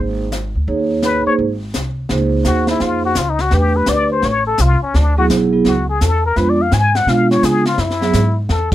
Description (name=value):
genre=jazz, small-group swing and bop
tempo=169 BPM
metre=4/4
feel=swing 65% on 8ths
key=unclear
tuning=A4 = 440 Hz
part: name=vibraphone with soft mallets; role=accompaniment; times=0.0-8.7 s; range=F#3 to Db5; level=-16 LUFS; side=right 3 dB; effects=none
part: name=upright bass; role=bass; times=0.0-8.7 s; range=Ab1 to Db3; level=-18 LUFS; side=equal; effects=none
part: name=jazz brush drum kit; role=drums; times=0.3-8.7 s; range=brushed snare drum, crash cymbal, hi-hat, kick drum, snare drum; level=-22 LUFS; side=left 1 dB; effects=none
part: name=trumpet with plunger mute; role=melody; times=1.0-8.7 s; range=C#4 to Ab5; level=-18 LUFS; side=left 4 dB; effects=none
room=little or no reverb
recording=close, detailed microphones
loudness=-13 LUFS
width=side -14 dB against mid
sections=0.0-2.1 A section; 2.1-8.7 B section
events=none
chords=0.0 Dbsus2 (rootless); 0.7 Eb5; 1.4 Ab; 2.1 Dbmaj7; 3.5 Em7; 4.2 Aaug; 4.9 Dmaj9; 6.4 Db7b9; 7.8 Gbm9